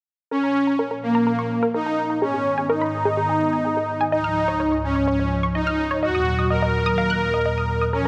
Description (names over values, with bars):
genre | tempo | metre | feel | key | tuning
techno | 126 BPM | 4/4 | straight | Bb phrygian | A4 = 440 Hz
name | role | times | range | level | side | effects
soft supersaw | melody | 0.3-8.1 s | Bb3 to Bb4 | -24 LUFS | equal | phaser, dub echo
warm analog pad | sustained chords | 0.3-8.1 s | Db2 to Db4 | -29 LUFS | equal | chorus
unison pluck | arpeggios | 0.3-8.1 s | Ab4 to Gb6 | -29 LUFS | equal | dub echo
room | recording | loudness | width
moderate lush hall reverb, RT60 3.1 s | none | -22 LUFS | mono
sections
0.3-8.1 A section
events
filter sweep on synth pluck 0.3-8.1; filter sweep on analog synth pad 0.3-8.1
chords
0.3 Bbm; 2.2 Abm; 4.1 Db; 6.0 Ebm